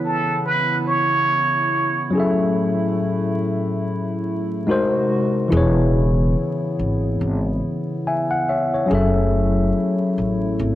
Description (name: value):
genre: hip hop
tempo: 71 BPM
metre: 4/4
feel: swing 58% on 16ths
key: F# minor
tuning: A4 = 440 Hz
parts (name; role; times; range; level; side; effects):
- trumpet with plunger mute; melody; 0.0-2.1 s; A4 to C#5; -19 LUFS; right 2 dB; none
- tine electric piano; accompaniment; 0.0-10.8 s; E3 to G#5; -21 LUFS; left 2 dB; cassette tape
- hollow soft pad; sustained chords; 0.0-10.8 s; A2 to F#4; -26 LUFS; right 1 dB; chorus
- upright bass; bass; 5.5-10.8 s; E1 to A1; -20 LUFS; equal; none
room: light reverb, small room ambience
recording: vinyl crackle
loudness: -18 LUFS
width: side -13 dB against mid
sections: 0.0-10.8 A section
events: break 0.0-5.5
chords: 0.0 C#m7; 2.1 F#m9; 4.7 G#7; 5.5 C#m7/E; 8.9 F#m9